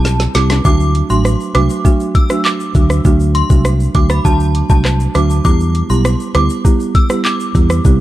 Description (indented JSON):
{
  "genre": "dancehall",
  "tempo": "100 BPM",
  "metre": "4/4",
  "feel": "straight",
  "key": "E minor",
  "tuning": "A4 = 441 Hz",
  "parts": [
    { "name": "folk marimba with medium mallets", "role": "accompaniment", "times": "0.0-8.0 s", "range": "F#3 to G4", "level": "-17 LUFS", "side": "right 4 dB", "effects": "none" },
    { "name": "mellow fretless electric bass", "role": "bass", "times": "0.0-8.0 s", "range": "A1 to E2", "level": "-14 LUFS", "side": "equal", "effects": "none" },
    { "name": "island pop drum kit", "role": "drums", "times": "0.1-8.0 s", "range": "handclaps, hi-hat, kick drum, rim click, shaker, snare drum", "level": "-14 LUFS", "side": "equal", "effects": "vintage 12-bit sampler grit" },
    { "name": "tube shaker and timbales", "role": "percussion", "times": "0.1-8.0 s", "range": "none", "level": "-31 LUFS", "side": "left 6 dB", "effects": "none" },
    { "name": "synth chime", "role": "melody", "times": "0.4-7.7 s", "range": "A5 to E6", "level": "-21 LUFS", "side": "equal", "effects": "ensemble chorus, phaser, digital delay" }
  ],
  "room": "little or no reverb",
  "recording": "dark, warm production",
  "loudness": "-11 LUFS",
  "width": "side -15 dB against mid",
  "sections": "0.0-8.0 A section",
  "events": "drum fill 0.1-0.7",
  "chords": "0.0 C; 0.7 D; 5.5 Em"
}